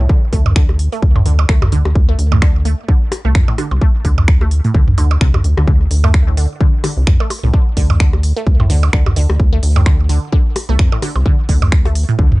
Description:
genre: minimal techno.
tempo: 129 BPM.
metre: 4/4.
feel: swing 57% on 16ths.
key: D minor.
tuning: A4 = 444 Hz.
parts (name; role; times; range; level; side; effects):
resonant blip pluck; riff; 0.0-12.2 s; A2 to A3; -22 LUFS; right 1 dB; phaser, cassette tape, sidechain pumping, dub echo.
rubbery square bass; bass; 0.0-12.4 s; C2 to F2; -14 LUFS; equal; sidechain pumping.
downlifter and reverse cymbal; sound effects; 0.0-2.0, 12.3-12.4 s; none; -42 LUFS; right 1 dB; none.
electronic kick drum; drums; 0.1-12.3 s; none; -13 LUFS; equal; none.
house drum kit; drums; 0.3-12.2 s; finger snaps, hi-hat; -23 LUFS; equal; none.
electronic toms and percussion blips; percussion; 0.5-12.4 s; none; -18 LUFS; right 1 dB; overdrive.
room: little or no reverb.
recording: dark, warm production, nothing above 10.4 kHz.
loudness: -11 LUFS.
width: side -21 dB against mid.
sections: 0.0-12.4 A section.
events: reverse cymbal 12.3.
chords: 0.0 D5.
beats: | 0.09 0.56 1.02 1.49 | 1.95 2.42 2.88 3.35 | 3.81 4.28 4.75 5.21 | 5.67 6.14 6.61 7.07 | 7.54 8.00 8.47 8.93 | 9.40 9.86 10.33 10.79 | 11.26 11.72 12.19.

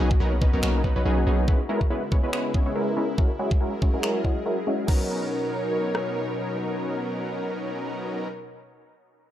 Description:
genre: future bass.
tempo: 141 BPM.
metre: 4/4.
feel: swing 55% on 16ths, half-time.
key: B major.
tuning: A4 = 441 Hz.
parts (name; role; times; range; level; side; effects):
airy breathy pad; sustained chords; 0.4-8.3 s; B2 to C#5; -33 LUFS; equal; chorus, sidechain pumping.
Celtic harp; arpeggios; 0.0-4.1 s; A#3 to B4; -37 LUFS; left 4 dB; none.
supersaw stab; riff; 0.0-8.3 s; F#3 to D#5; -26 LUFS; equal; cassette tape, sidechain pumping, low-pass filter, dub echo.
warm 808-style bass; bass; 0.0-1.5 s; B1; -23 LUFS; equal; sidechain pumping.
dubstep drum kit; drums; 0.1-6.1 s; kick drum, rim click; -22 LUFS; equal; none.
dubstep drum kit; drums; 0.6-5.0 s; crash cymbal, finger snaps; -33 LUFS; equal; none.
room: light reverb.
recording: lossy compression artefacts.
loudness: -23 LUFS.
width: side -12 dB against mid.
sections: 0.0-4.9 A section; 4.9-8.3 B section.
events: filter sweep on supersaw synth 0.0-4.9.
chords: 0.0 Bmaj9; 1.5 C#m7; 3.2 F#9; 4.9 Bmaj9.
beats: 0.20 0.63 1.05 | 1.48 1.91 2.33 2.76 | 3.18 3.61 4.03 4.46 | 4.88 5.31 5.74 6.16 | 6.59 7.01 7.44 7.86.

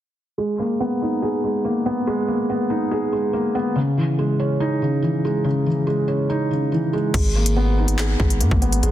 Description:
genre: hip hop, drill.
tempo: 142 BPM.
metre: 4/4.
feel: half-time.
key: G# minor.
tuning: A4 = 441 Hz.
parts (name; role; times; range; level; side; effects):
felt-muted upright piano; accompaniment; 0.4-8.9 s; C#3 to G#4; -20 LUFS; equal; low-pass filter.
long sustained 808-style bass; bass; 7.1-8.9 s; G#1 to G#2; -19 LUFS; equal; none.
drill drum kit; drums; 7.1-8.9 s; crash cymbal, handclaps, hi-hat, kick drum; -22 LUFS; equal; none.
room: light reverb.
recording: dense, heavily limited modern master.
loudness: -18 LUFS.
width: side -12 dB against mid.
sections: 0.4-7.1 A section; 7.1-8.9 B section.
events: filter sweep on felt piano 0.4-7.1.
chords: 0.4 G#madd9; 3.8 C#madd9; 7.1 G#madd9.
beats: | 0.38 0.80 1.23 1.65 | 2.07 2.49 2.92 3.34 | 3.76 4.18 4.61 5.03 | 5.45 5.87 6.30 6.72 | 7.14 7.56 7.99 8.41 | 8.83.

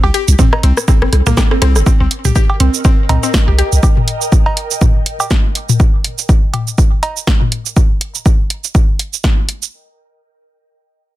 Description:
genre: minimal techno.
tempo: 122 BPM.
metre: 4/4.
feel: swing 57% on 16ths.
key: C minor.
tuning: A4 = 441 Hz.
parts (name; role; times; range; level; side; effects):
mallet-like synth pluck; riff; 0.0-3.6 s; Bb3 to G4; -19 LUFS; left 1 dB; chorus, sidechain pumping, digital delay.
punchy sub bass; bass; 0.0-3.8 s; G1 to C2; -11 LUFS; equal; sidechain pumping.
techno drum kit; percussion; 0.0-7.5 s; cowbell, rim click, toms; -19 LUFS; left 2 dB; overdrive, tape echo.
punchy analog drum machine; drums; 0.1-9.7 s; cabasa, hi-hat, rim click, snare drum; -19 LUFS; right 2 dB; none.
electronic kick drum; drums; 0.4-9.4 s; none; -11 LUFS; equal; none.
ethereal airy pad; texture; 2.6-5.8 s; Bb4 to G5; -26 LUFS; right 2 dB; ensemble chorus, built-in reverb, phaser, sidechain pumping.
room: little or no reverb.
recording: dense, heavily limited modern master.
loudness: -11 LUFS.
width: side -16 dB against mid.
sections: 0.0-1.9 A section; 1.9-9.7 B section.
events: drop 0.0-1.9; drum fill 0.9-1.9; fade-out on ambient pad 1.9-5.8; filter sweep on sub bass 1.9-3.8.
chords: 0.0 N.C.; 1.9 Cm (rootless).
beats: 0.39 0.88 1.37 | 1.86 2.35 2.85 3.34 | 3.83 4.32 4.81 5.31 | 5.80 6.29 6.78 7.27 | 7.76 8.26 8.75 9.24.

